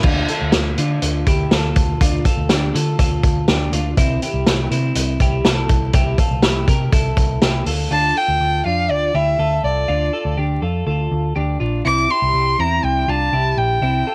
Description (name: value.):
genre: jangly indie pop.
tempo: 122 BPM.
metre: 4/4.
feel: straight.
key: D minor.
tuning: A4 = 441 Hz.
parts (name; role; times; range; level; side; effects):
twelve-string electric guitar; arpeggios; 0.0-14.1 s; C4 to Bb4; -26 LUFS; equal; cassette tape.
vintage muted picked electric bass; bass; 0.0-14.0 s; Bb1 to D3; -23 LUFS; equal; none.
vintage drum kit; drums; 0.0-7.8 s; crash cymbal, hi-hat, kick drum, snare drum; -20 LUFS; equal; none.
dark violin; melody; 7.9-14.1 s; D5 to D6; -20 LUFS; equal; cassette tape.
room: light reverb.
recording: home recording on cassette, vinyl crackle.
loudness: -18 LUFS.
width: mono.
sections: 0.0-7.9 A section; 7.9-14.1 B section.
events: none.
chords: 0.0 Dm; 4.0 C; 7.7 Dm.